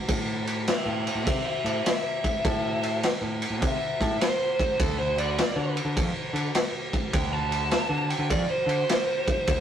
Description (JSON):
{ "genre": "blues rock power trio and southern rock", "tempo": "102 BPM", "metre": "4/4", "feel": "swing 65% on 8ths", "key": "A minor", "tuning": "A4 = 439 Hz", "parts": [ { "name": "growling picked electric bass", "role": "bass", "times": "0.1-9.6 s", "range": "D2 to D3", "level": "-30 LUFS", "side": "left 1 dB", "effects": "overdrive" }, { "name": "raw garage drum kit", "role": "drums", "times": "0.1-9.6 s", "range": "kick drum, ride cymbal, snare drum", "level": "-26 LUFS", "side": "equal", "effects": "none" }, { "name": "dark smooth lead guitar", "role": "melody", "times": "0.7-9.6 s", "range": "A4 to A5", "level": "-28 LUFS", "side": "right 1 dB", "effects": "overdrive" } ], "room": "light reverb", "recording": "rough rehearsal-room recording, tube saturation", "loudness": "-24 LUFS", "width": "side -9 dB against mid", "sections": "0.0-9.6 A section", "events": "lead electric guitar solo 0.0-9.6", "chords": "0.0 Am; 4.8 D7(no3)" }